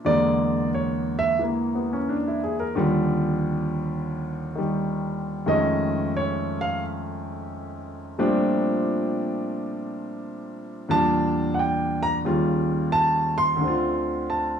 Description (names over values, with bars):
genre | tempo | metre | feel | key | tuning
solo jazz | 88 BPM | 4/4 | swing 67% on 8ths | unclear | A4 = 441 Hz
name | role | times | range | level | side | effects
clear grand piano | solo | 0.0-14.6 s | D2 to C6 | -22 LUFS | equal | none
room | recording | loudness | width
moderate large studio reverb, RT60 0.9 s | studio ambience | -22 LUFS | side -8 dB against mid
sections
0.0-13.6 A section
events
grand piano solo 0.0-13.6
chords
0.0 E7#11; 2.7 Ebmaj9; 5.5 F7alt; 8.2 Bbmaj13; 10.9 Em7b5; 12.2 Eb9; 13.6 Dm7